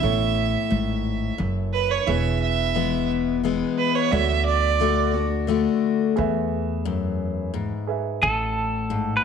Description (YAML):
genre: honky-tonk and classic country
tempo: 88 BPM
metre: 3/4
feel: straight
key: A major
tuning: A4 = 441 Hz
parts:
  - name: rich fiddle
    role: second line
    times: 0.0-5.1 s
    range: B4 to E5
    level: -24 LUFS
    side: right 10 dB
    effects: tape echo
  - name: picked steel-string acoustic guitar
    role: accompaniment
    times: 0.0-9.2 s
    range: E2 to F#4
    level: -24 LUFS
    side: left 8 dB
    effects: none
  - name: warm upright piano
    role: accompaniment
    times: 0.0-8.2 s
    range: E4 to E5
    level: -31 LUFS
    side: right 12 dB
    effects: none
  - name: upright bass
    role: bass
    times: 0.0-9.2 s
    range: E1 to E2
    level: -26 LUFS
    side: right 1 dB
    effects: none
  - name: clean electric guitar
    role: melody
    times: 8.2-9.2 s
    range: A4 to B4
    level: -22 LUFS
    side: right 2 dB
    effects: none
room: wet echo chamber reverb, RT60 1.2 s, small room ambience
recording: 1960s-style stereo with parts hard left and right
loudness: -20 LUFS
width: side -7 dB against mid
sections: 0.0-8.2 A section; 8.2-9.2 B section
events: fiddle solo 0.0-8.2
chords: 0.0 A; 2.1 E; 4.1 D; 6.2 E; 8.2 Amaj7(no3)